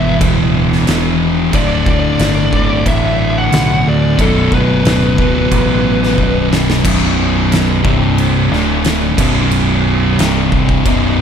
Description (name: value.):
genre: stoner and doom metal.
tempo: 90 BPM.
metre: 4/4.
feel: straight.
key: B minor.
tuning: A4 = 442 Hz.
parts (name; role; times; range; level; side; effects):
fuzz lead guitar; melody; 0.0-6.5 s; A4 to F#5; -19 LUFS; left 1 dB; distortion, ping-pong delay.
fuzz guitar; riff; 0.0-11.2 s; B1 to E3; -20 LUFS; left 2 dB; distortion.
thick fuzz guitar; riff; 0.0-11.2 s; B1 to E3; -17 LUFS; left 8 dB; distortion.
thick fuzz guitar; riff; 0.0-11.2 s; B1 to E3; -17 LUFS; right 9 dB; distortion.
growling picked electric bass; bass; 0.0-11.2 s; B0 to D2; -19 LUFS; equal; overdrive.
oversized low-tuned drum kit; drums; 0.2-11.0 s; crash cymbal, kick drum, snare drum; -17 LUFS; equal; none.
room: light reverb, studio ambience.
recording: dark, warm production.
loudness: -11 LUFS.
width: side -8 dB against mid.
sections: 0.0-6.8 A section; 6.8-11.2 B section.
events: drum fill 6.2-6.8.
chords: 0.0 E5; 1.5 D5; 4.2 Bm; 6.8 B5; 7.8 C5; 8.5 D5; 9.2 B5; 10.2 C5.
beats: 0.21 0.87 | 1.53 2.19 2.86 3.52 | 4.18 4.85 5.51 6.18 | 6.84 7.51 8.18 8.85 | 9.52 10.18 10.85.